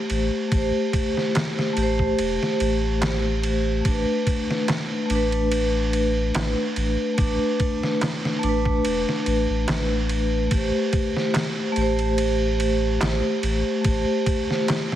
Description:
trip hop; 72 BPM; 4/4; swing 54% on 16ths; A minor; A4 = 441 Hz
vibraphone with soft mallets; accompaniment; 0.0-15.0 s; A3 to C5; -23 LUFS; left 1 dB; harmonic tremolo, tape echo
warm sub bass; bass; 0.1-14.0 s; E1 to A1; -25 LUFS; equal
trip hop sampler-style drum kit; drums; 0.1-15.0 s; kick drum, ride cymbal, snare drum; -26 LUFS; right 1 dB
darbuka; percussion; 1.4-14.9 s; -33 LUFS; right 3 dB
light reverb, small room ambience; heavily compressed radio sound, vinyl crackle; -20 LUFS; side -12 dB against mid
0.0-15.0 A section
0.0 Am7; 3.8 Bm7/A; 10.5 Am7

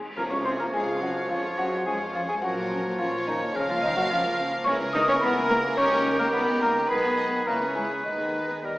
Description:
cinematic, playful, whimsical film cue; 107 BPM; 2/4; straight; Db major, G# minor from 4.7 s; A4 = 440 Hz
marimba with medium hard mallets; melody; 0.0-8.8 s; Db5 to D#6; -31 LUFS; left 1 dB
warm chamber violin section; melody; 0.0-8.8 s; F4 to B4; -38 LUFS; left 2 dB
warm chamber viola section; accompaniment; 0.0-8.8 s; F3 to F4; -35 LUFS; right 1 dB
dark chamber double bass section; bass; 0.0-8.8 s; Bb1 to F2; -42 LUFS; right 1 dB
clear oboe; second line; 0.2-8.8 s; G4 to Db5; -31 LUFS; equal
mellow hollow large flute ensemble; second line; 0.2-8.8 s; Db5 to D#6; -31 LUFS; equal
warm clarinet; second line; 0.2-8.8 s; Db4 to D#5; -32 LUFS; equal
warm bassoon; accompaniment; 0.2-8.8 s; D#3 to G#3; -33 LUFS; right 1 dB
mellow French horn section; sustained chords; 0.2-8.8 s; Db3 to D#4; -33 LUFS; left 1 dB
warm studio cello section; bass; 0.2-8.8 s; Db3 to D#4; -34 LUFS; right 1 dB
tam-tam; percussion; 0.2-2.4 s; -39 LUFS; equal
warm chamber violin section; second line; 0.7-8.8 s; Bb4 to F5; -32 LUFS; equal
wet scoring stage reverb, RT60 1.6 s; small speaker sound; -23 LUFS; side -18 dB against mid
0.2-8.8 A section
band accent 0.2-0.7
0.2 Db; 1.3 Db/F; 2.4 Bbm; 3.5 Bbm/Db; 4.7 A#m7b5/C#; 5.8 D#7/C#; 6.9 G#m/B; 7.5 C#m7; 8.0 G#m/D#

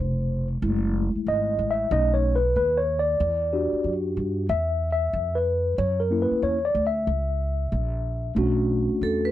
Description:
hip hop; 93 BPM; 4/4; swing 64% on 16ths; B minor; A4 = 438 Hz
mellow tine electric piano; accompaniment; 0.0-9.3 s; B2 to E5; -24 LUFS; left 1 dB; medium stereo tremolo
upright bass; bass; 0.0-9.3 s; E#1 to G2; -26 LUFS; equal
vibraphone with medium hard mallets; melody; 9.0-9.3 s; A4 to B4; -25 LUFS; right 2 dB
light reverb; dark, warm production; -22 LUFS; side -13 dB against mid
0.0-8.4 A section
tine electric piano solo 0.0-8.4
0.0 Cmaj7(no3); 0.6 F#m7; 1.9 B7; 3.2 Em7; 5.8 F#7; 8.4 Bm7

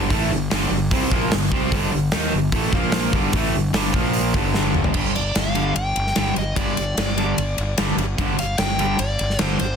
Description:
hard rock; 148 BPM; 4/4; straight; G minor; A4 = 440 Hz
overdriven electric guitar; riff; 0.0-9.6 s; G2 to Eb4; -25 LUFS; left 10 dB
overdriven semi-hollow guitar; riff; 0.0-9.6 s; G2 to Eb4; -25 LUFS; right 12 dB
fuzz fingered electric bass; bass; 0.0-9.8 s; G1 to Eb2; -25 LUFS; equal; overdrive
gated 80s drum kit; drums; 0.1-9.7 s; crash cymbal, hi-hat, kick drum, ride cymbal, snare drum, toms; -23 LUFS; equal
dark smooth lead guitar; melody; 5.2-9.8 s; C5 to G5; -26 LUFS; left 1 dB; overdrive, analog delay
light reverb; dense, heavily limited modern master; -18 LUFS; side -7 dB against mid
0.0-5.0 A section; 5.0-9.8 B section
drum fill 4.6-5.0
0.0 Gm; 2.7 Bb5; 3.1 G5; 3.9 Bb5; 4.3 G5

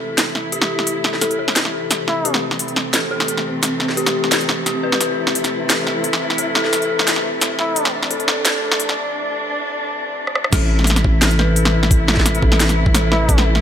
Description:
half-time drum and bass; 174 BPM; 4/4; half-time; A minor; A4 = 439 Hz
warm symphonic cello section; sustained chords; 0.0-13.6 s; C3 to E4; -23 LUFS; left 1 dB; vintage 12-bit sampler grit, sidechain pumping
dark detuned synth bell; arpeggios; 0.0-13.6 s; G4 to B4; -24 LUFS; left 2 dB; chorus, phaser, digital delay
drum and bass drum kit; drums; 0.2-13.6 s; crash cymbal, hi-hat, rim click, snare drum; -19 LUFS; equal; high-pass filter on hats, high-pass filter on snare, high-pass filter on cymbals
trumpet with bucket mute; melody; 2.1-2.4, 7.6-7.9, 13.1-13.5 s; E4; -25 LUFS; equal; digital delay
growling 808-style bass; bass; 10.5-13.6 s; A1; -16 LUFS; equal
electronic kick drum; drums; 10.5-13.4 s; -16 LUFS; equal
moderate lush hall reverb, RT60 2.2 s; high-pass filter; -15 LUFS; side -9 dB against mid
0.0-10.5 A section; 10.5-13.6 B section
build-up 0.0-10.5; break 9.1-10.5; drum fill 10.3; drop 10.5-13.6
0.0 Am

